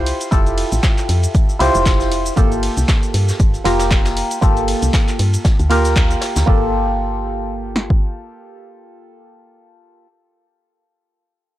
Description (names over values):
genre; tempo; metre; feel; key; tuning
deep house; 117 BPM; 4/4; swing 57% on 16ths; G dorian; A4 = 440 Hz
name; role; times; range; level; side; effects
percussive organ stab; stabs; 0.0-10.1 s; Bb3 to C5; -20 LUFS; equal; chorus, phaser, sidechain pumping, tape echo
woody FM bass; bass; 0.0-8.0 s; F1 to G2; -19 LUFS; equal; tube saturation
punchy analog drum machine; drums; 0.1-6.5 s; handclaps, hi-hat, ride cymbal, shaker; -25 LUFS; right 1 dB; none
vintage brush drum kit; drums; 0.1-6.5 s; hi-hat, snare drum; -29 LUFS; left 1 dB; sidechain pumping on hats, high-pass filter on hats, high-pass filter on snare, high-pass filter on room
punchy analog drum machine; drums; 0.3-8.0 s; kick drum, snare drum; -15 LUFS; equal; none
room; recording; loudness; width
little or no reverb; dry, gritty hardware recording, cassette tape; -14 LUFS; side -14 dB against mid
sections
0.0-6.5 A section; 6.5-10.6 B section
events
drop 0.0-6.5; band accent 6.0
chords
0.0 Fmaj9; 2.4 Gm9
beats
| 0.32 0.83 1.35 1.86 | 2.37 2.88 3.40 3.91 | 4.42 4.94 5.45 5.96 | 6.47 6.99 7.50 8.01 | 8.53 9.04 9.55 10.06